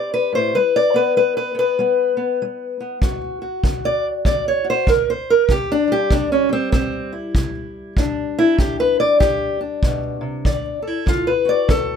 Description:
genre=acoustic country blues, solo or duo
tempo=97 BPM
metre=4/4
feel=swing 61% on 8ths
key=G major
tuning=A4 = 440 Hz
part: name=fingerpicked steel-string acoustic guitar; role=melody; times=0.0-12.0 s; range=G2 to D5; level=-17 LUFS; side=left 1 dB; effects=none
part: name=kick drum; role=drums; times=3.0-11.9 s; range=none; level=-20 LUFS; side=equal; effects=none
room=little or no reverb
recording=close, detailed microphones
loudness=-16 LUFS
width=side -7 dB against mid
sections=0.0-12.0 A section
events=steel-string acoustic guitar solo 0.0-12.0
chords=0.0 C5; 0.6 G; 3.0 D; 5.5 C; 8.0 G; 10.5 D

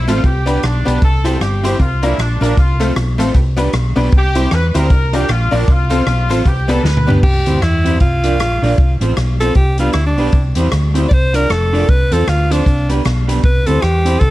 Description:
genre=ska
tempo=155 BPM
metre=4/4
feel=swing 59% on 8ths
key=C major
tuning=A4 = 438 Hz
part: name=warm horn section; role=melody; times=0.0-7.1 s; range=D4 to B4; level=-21 LUFS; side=left 1 dB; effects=none
part: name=hollow-body short-scale fingered electric bass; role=bass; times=0.0-14.3 s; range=F1 to E2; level=-16 LUFS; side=equal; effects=none
part: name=electric guitar at the edge of break-up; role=accompaniment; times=0.1-14.2 s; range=B3 to D5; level=-21 LUFS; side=right 2 dB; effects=wide subtle chorus
part: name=tack piano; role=stabs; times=0.1-7.2 s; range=A3 to D5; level=-21 LUFS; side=left 3 dB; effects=tape echo
part: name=swinging big-band drum kit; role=drums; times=0.1-14.3 s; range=crash cymbal, hi-hat, kick drum, rim click, snare drum, toms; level=-17 LUFS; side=equal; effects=vintage 12-bit sampler grit
part: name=edgy alto saxophone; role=melody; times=7.2-14.3 s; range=D4 to D5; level=-19 LUFS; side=equal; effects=tape echo
room=little or no reverb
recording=vinyl crackle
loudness=-12 LUFS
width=side -16 dB against mid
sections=0.0-7.2 A section; 7.2-14.3 B section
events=drum fill 6.8-7.2; alto saxophone solo 7.2-14.3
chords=0.2 G/C; 1.0 C; 1.8 Bb/C; 2.6 F/C; 3.3 G/C; 4.1 C; 4.9 Bb/C; 5.7 F/C; 6.5 G/C; 7.2 C; 8.0 Bb/C; 8.8 F; 9.6 G/C; 10.3 C; 11.1 Bb/C; 11.9 F/C; 12.7 G/C; 13.4 C

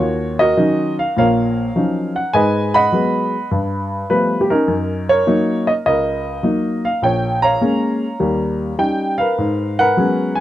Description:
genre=solo jazz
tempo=102 BPM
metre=4/4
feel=swing 68% on 8ths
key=Eb minor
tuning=A4 = 440 Hz
part: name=warm baby grand piano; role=solo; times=0.0-10.4 s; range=Bb1 to Cb6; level=-15 LUFS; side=equal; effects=none
room=light reverb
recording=dry, close 1970s-style studio recording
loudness=-15 LUFS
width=side -13 dB against mid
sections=0.0-10.4 A section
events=none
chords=0.0 Ebm9; 2.3 Abm7; 3.5 G9; 4.7 Gb6; 7.0 Bbm7; 8.2 Eb7; 9.4 Abm11

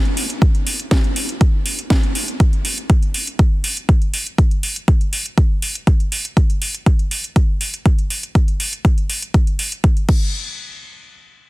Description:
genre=house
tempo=121 BPM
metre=4/4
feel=straight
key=none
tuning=none
part: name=house drum kit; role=drums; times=0.1-10.2 s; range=crash cymbal, hi-hat, snare drum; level=-22 LUFS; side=equal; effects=overdrive, sidechain pumping on hats, sidechain pumping on cymbals
part: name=electronic kick drum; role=drums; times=0.4-10.2 s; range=none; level=-14 LUFS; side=equal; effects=overdrive
room=little or no reverb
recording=dense, heavily limited modern master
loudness=-15 LUFS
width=side -21 dB against mid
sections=0.0-10.3 A section; 10.3-11.5 B section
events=none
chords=none

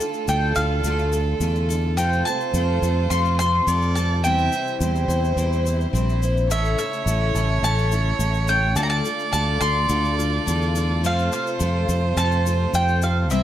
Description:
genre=indie folk with a building arrangement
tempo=106 BPM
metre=4/4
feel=straight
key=D minor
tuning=A4 = 437 Hz
part: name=mandolin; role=melody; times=0.0-13.4 s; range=E5 to C6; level=-25 LUFS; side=equal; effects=slapback echo
part: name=warm fiddle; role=second line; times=0.0-13.4 s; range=A4 to E5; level=-27 LUFS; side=right 8 dB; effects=none
part: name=picked twelve-string acoustic guitar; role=accompaniment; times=0.0-13.4 s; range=A2 to C5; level=-28 LUFS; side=left 6 dB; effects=none
part: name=warm symphonic string section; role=sustained chords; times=0.0-13.4 s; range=C3 to F4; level=-33 LUFS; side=left 2 dB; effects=none
part: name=tube shaker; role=percussion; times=0.0-13.4 s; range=none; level=-34 LUFS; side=left 9 dB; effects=none
part: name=fingered electric bass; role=bass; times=0.3-13.4 s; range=A1 to F2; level=-22 LUFS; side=equal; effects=none
room=small room ambience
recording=dark, warm production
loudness=-19 LUFS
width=side -11 dB against mid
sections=0.0-13.4 A section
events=none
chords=0.0 Dm; 2.0 F; 4.2 C/E; 6.5 A; 8.8 Dm; 11.0 F

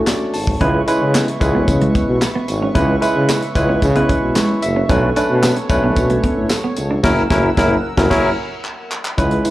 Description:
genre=early-eighties boogie funk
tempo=112 BPM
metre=4/4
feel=straight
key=B dorian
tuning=A4 = 440 Hz
part: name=barky tine electric piano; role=accompaniment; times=0.0-9.5 s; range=F#3 to C#6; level=-18 LUFS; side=equal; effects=overdrive, slapback echo
part: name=chorused pulse-width pad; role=sustained chords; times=0.0-9.2 s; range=A4 to E6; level=-29 LUFS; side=right 1 dB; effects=none
part: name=clear tuba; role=bass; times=0.0-9.4 s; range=F#1 to C#3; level=-18 LUFS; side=equal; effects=none
part: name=tight funk drum kit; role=drums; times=0.1-9.5 s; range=crash cymbal, handclaps, hi-hat, kick drum, snare drum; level=-20 LUFS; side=equal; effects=none
part: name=tambourine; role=percussion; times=0.1-9.5 s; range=none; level=-33 LUFS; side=right 2 dB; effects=none
part: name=semi-hollow electric guitar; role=riff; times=0.6-9.5 s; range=G#3 to E4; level=-23 LUFS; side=right 3 dB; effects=lush chorus, slapback echo
room=light reverb, small room ambience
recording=live gig heard through the venue's PA, club reverb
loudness=-14 LUFS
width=side -16 dB against mid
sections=0.0-9.2 A section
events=tine electric piano fill 0.0-0.6, 4.1-4.9; band accent 7.0-9.2; drum fill 8.6-9.2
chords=0.0 Bm9 (rootless); 0.6 C#m7; 4.9 Bm9; 7.0 F#7

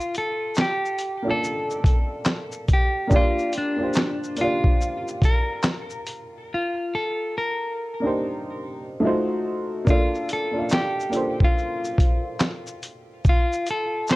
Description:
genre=lo-fi hip hop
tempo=71 BPM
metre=4/4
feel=swing 63% on 16ths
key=unclear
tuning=A4 = 437 Hz
part: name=semi-hollow electric guitar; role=melody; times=0.0-14.2 s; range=D4 to C5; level=-26 LUFS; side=left 1 dB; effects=spring reverb, tape echo
part: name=warm upright piano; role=accompaniment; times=0.0-14.2 s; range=A3 to F5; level=-26 LUFS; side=right 1 dB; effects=cassette tape
part: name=dusty soul sampler-style drum kit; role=drums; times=0.0-14.2 s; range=handclaps, hi-hat, kick drum, shaker, snare drum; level=-20 LUFS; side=equal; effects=none
room=light reverb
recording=cassette tape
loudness=-21 LUFS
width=side -20 dB against mid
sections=0.0-14.2 A section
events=break 6.5-9.9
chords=0.0 Bbmaj7; 3.1 Gm7; 6.5 Cm9; 9.0 F7b9; 9.9 Bbmaj7

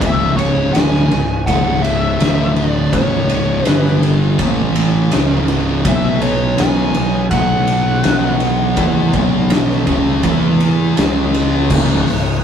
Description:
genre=stoner and doom metal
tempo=82 BPM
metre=4/4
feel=straight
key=C# minor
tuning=A4 = 440 Hz
part: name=fuzz lead guitar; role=melody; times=0.0-10.9 s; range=C#5 to G#5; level=-20 LUFS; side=equal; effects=wah, distortion
part: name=thick fuzz guitar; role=riff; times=0.0-12.4 s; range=C#2 to E4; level=-18 LUFS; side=left 4 dB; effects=distortion
part: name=thick fuzz guitar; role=riff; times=0.0-12.4 s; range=C#2 to E4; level=-20 LUFS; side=right 6 dB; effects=distortion
part: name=fuzz fingered electric bass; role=bass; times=0.0-12.4 s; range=C#1 to E2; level=-21 LUFS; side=equal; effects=overdrive
part: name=oversized low-tuned drum kit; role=drums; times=0.0-12.2 s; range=crash cymbal, hi-hat, kick drum, ride cymbal, snare drum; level=-18 LUFS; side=equal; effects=none
room=moderate studio reverb, RT60 0.6 s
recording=rough rehearsal-room recording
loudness=-12 LUFS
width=side -8 dB against mid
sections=0.0-11.7 A section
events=none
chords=0.0 C#5; 2.2 D5; 2.9 C#5; 3.7 G5; 4.4 A5; 5.1 C#5; 5.9 B5; 10.2 E5; 11.0 C#5

